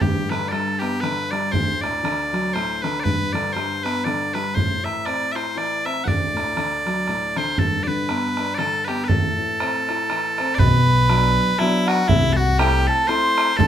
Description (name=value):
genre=celtic folk, Celtic waltz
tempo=119 BPM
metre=3/4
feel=swing 57% on 8ths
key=A dorian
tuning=A4 = 441 Hz
part: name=loud bright bagpipes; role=melody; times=0.0-13.7 s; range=E4 to F#5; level=-23 LUFS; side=equal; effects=none
part: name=dark baby grand piano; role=accompaniment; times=0.0-13.7 s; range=D2 to E4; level=-26 LUFS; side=left 2 dB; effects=none
part: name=bodhran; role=percussion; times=0.0-13.7 s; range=none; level=-24 LUFS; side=right 2 dB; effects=none
part: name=mellow hollow wooden flute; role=second line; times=10.6-13.7 s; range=E5 to C6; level=-22 LUFS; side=right 1 dB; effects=none
part: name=upright bass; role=bass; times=10.6-13.7 s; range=B1 to D2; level=-20 LUFS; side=left 1 dB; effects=none
room=wet studio reverb, RT60 0.7 s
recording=band playing live in one room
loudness=-18 LUFS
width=side -10 dB against mid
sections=0.0-10.6 A section; 10.6-13.7 B section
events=none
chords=0.0 G; 1.5 D; 3.0 G; 4.6 Am; 6.1 D; 7.6 G; 9.1 Am; 10.6 Bm; 12.1 Am/C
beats=| 0.02 0.52 1.03 | 1.53 2.04 2.54 | 3.05 3.55 4.06 | 4.56 5.07 5.57 | 6.07 6.58 7.08 | 7.58 8.08 8.59 | 9.09 9.59 10.09 | 10.59 11.09 11.59 | 12.09 12.59 13.09 | 13.59